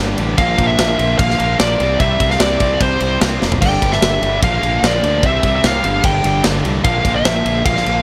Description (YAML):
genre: hard rock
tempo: 148 BPM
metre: 4/4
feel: straight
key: unclear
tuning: A4 = 440 Hz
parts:
  - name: overdriven tonewheel organ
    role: sustained chords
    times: 0.0-8.0 s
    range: G3 to D5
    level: -33 LUFS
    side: equal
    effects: none
  - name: crunchy overdriven guitar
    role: riff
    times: 0.0-8.0 s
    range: G2 to C4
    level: -27 LUFS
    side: equal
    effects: none
  - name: distorted electric guitar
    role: riff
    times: 0.0-8.0 s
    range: G2 to C4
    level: -27 LUFS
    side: equal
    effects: distortion
  - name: sludgy distorted guitar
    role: riff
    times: 0.0-8.0 s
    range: G2 to E4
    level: -27 LUFS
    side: equal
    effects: none
  - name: modern bright fingered electric bass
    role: bass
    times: 0.0-8.0 s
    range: F1 to D2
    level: -23 LUFS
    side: equal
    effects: none
  - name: tight metal drum kit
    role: drums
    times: 0.2-8.0 s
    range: crash cymbal, kick drum, ride cymbal, snare drum, toms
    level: -21 LUFS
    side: equal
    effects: none
  - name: smooth overdriven lead guitar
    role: melody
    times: 0.4-8.0 s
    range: C5 to G5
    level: -20 LUFS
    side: equal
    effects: tape echo
room: light reverb, small room ambience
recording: none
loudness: -15 LUFS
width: mono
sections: 0.0-8.0 A section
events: drum fill 3.4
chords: 0.4 Bb; 1.8 C; 3.6 Gm; 4.4 Bb; 5.2 C; 5.8 Gm; 6.9 Bb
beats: | 0.39 0.79 1.19 1.60 | 2.00 2.41 2.81 3.22 | 3.62 4.03 4.43 4.83 | 5.24 5.64 6.05 6.45 | 6.85 7.26 7.66